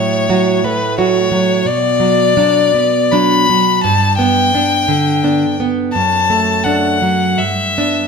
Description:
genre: romantic duo for violin and classical guitar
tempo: 76-89 BPM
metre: 3/4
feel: rubato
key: unclear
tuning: A4 = 440 Hz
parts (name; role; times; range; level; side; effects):
- clear violin; melody; 0.0-8.1 s; B4 to B5; -14 LUFS; left 5 dB; slapback echo
- nylon-string guitar; accompaniment; 0.0-8.1 s; F#2 to F#4; -15 LUFS; right 4 dB; none
room: moderate recital hall reverb, RT60 1.6 s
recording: none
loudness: -11 LUFS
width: side -5 dB against mid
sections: 0.0-8.1 A section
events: none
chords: 0.0 F#m/A; 1.7 Bm; 3.8 G; 5.9 D/F#; 7.4 Em7/G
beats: 0.30 0.98 | 1.66 2.36 3.13 | 3.84 4.54 5.23 | 5.94 6.65 7.39

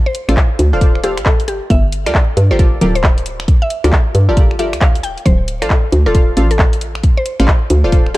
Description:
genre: UK garage, two-step garage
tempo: 135 BPM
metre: 4/4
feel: swing 63% on 16ths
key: D minor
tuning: A4 = 440 Hz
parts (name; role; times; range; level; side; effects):
- mallet-like synth pluck; melody; 0.1-8.2 s; G4 to G5; -22 LUFS; left 1 dB; chorus, dub echo
- house drum kit; drums; 0.1-8.2 s; finger snaps, handclaps, hi-hat; -20 LUFS; equal; studio reverb
- punchy chord stab; stabs; 0.3-8.2 s; F4 to F5; -21 LUFS; equal; chorus, vintage 12-bit sampler grit, dub echo
- hollow knocking FM bass; bass; 0.3-8.2 s; D1 to G2; -14 LUFS; equal; none
- electronic kick drum; drums; 0.4-8.0 s; none; -12 LUFS; equal; studio reverb
room: little or no reverb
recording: dark, warm production, vinyl crackle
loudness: -11 LUFS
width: side -18 dB against mid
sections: 0.0-8.2 A section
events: none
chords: 0.0 Dm7; 1.5 Gm9; 5.3 Dm7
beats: 0.37 0.81 1.26 | 1.70 2.15 2.59 3.04 | 3.48 3.92 4.37 4.81 | 5.26 5.70 6.15 6.59 | 7.04 7.48 7.92

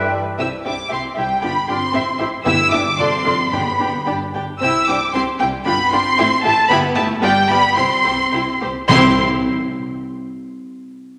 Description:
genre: quick classical-period movement for symphony orchestra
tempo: 104-117 BPM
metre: 2/4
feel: rubato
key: C major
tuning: A4 = 440 Hz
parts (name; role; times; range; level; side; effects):
- rich studio violin section; melody; 0.0-9.2 s; B4 to E6; -20 LUFS; equal; none
- rich studio violin section; second line; 0.0-9.2 s; G4 to G5; -27 LUFS; equal; none
- warm studio viola section; accompaniment; 0.0-9.2 s; G3 to F4; -27 LUFS; equal; none
- warm studio double bass section; bass; 0.0-9.2 s; F1 to G2; -32 LUFS; equal; none
- rich studio cello section; bass; 0.4-9.2 s; G3 to E4; -28 LUFS; equal; none
- timpani; percussion; 2.5-4.3, 8.9-9.2 s; G2 to C3; -25 LUFS; equal; none
room: wet scoring stage reverb, RT60 1.8 s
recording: none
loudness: -17 LUFS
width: mono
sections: 0.4-8.9 A section; 8.9-10.0 B section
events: none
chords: 0.4 C; 1.4 G7; 1.9 Am; 2.5 Em/G; 3.0 Dm; 3.5 G; 4.6 C; 5.7 G7; 6.2 Am; 6.7 Em; 7.2 G7; 7.8 C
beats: | 0.39 0.92 | 1.44 1.95 | 2.46 2.99 | 3.53 4.08 | 4.63 5.15 | 5.68 6.20 | 6.72 7.24 | 7.78 8.34 | 8.91

